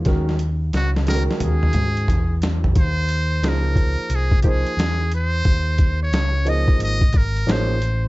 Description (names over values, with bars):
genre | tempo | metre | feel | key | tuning
hip hop, jazz-hop | 89 BPM | 4/4 | swing 65% on 16ths | unclear | A4 = 440 Hz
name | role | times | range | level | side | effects
warm concert grand piano | accompaniment | 0.0-7.7 s | Eb3 to Eb5 | -26 LUFS | right 1 dB | plate reverb
picked electric bass | bass | 0.0-8.1 s | Ab1 to Ab2 | -20 LUFS | equal | none
boom bap sampler-style drum kit | drums | 0.1-8.0 s | hi-hat, kick drum, snare drum, toms | -20 LUFS | equal | none
trumpet with metal mute | melody | 0.8-8.1 s | Gb4 to Eb5 | -26 LUFS | equal | plate reverb
room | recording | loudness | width
little or no reverb | dark, warm production, nothing above 7.7 kHz | -17 LUFS | side -20 dB against mid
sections
0.0-2.8 A section; 2.8-8.1 B section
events
drum fill 0.1-2.8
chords
0.1 Ebm7; 2.8 Absus24